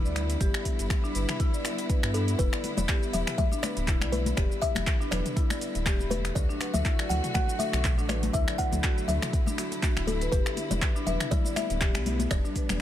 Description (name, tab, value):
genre	afro house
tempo	121 BPM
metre	4/4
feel	swing 55% on 16ths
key	E minor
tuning	A4 = 440 Hz
part	kalimba	melody	0.0-12.8 s	A4 to F#5	-34 LUFS	left 3 dB	dub echo
part	clear studio string section	sustained chords	0.0-12.8 s	D3 to F#4	-36 LUFS	right 1 dB	vintage 12-bit sampler grit, sidechain pumping
part	marimba with medium hard mallets	arpeggios	0.0-12.6 s	D4 to E5	-35 LUFS	left 2 dB	sidechain pumping, dub echo
part	round analog bass	bass	0.0-12.8 s	D1 to G2	-30 LUFS	equal	tube saturation, sidechain pumping
part	deep house drum kit	drums	0.1-12.8 s	finger snaps, handclaps, hi-hat, shaker, toms	-33 LUFS	equal	none
part	electronic kick drum	drums	0.4-12.7 s	none	-27 LUFS	equal	none
part	congas	percussion	2.4-12.8 s	none	-35 LUFS	left 3 dB	none
room	little or no reverb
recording	none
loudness	-25 LUFS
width	side -12 dB against mid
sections	0.0-12.8 A section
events	none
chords	0.0 G6; 2.4 Em7; 6.4 D; 10.3 Em7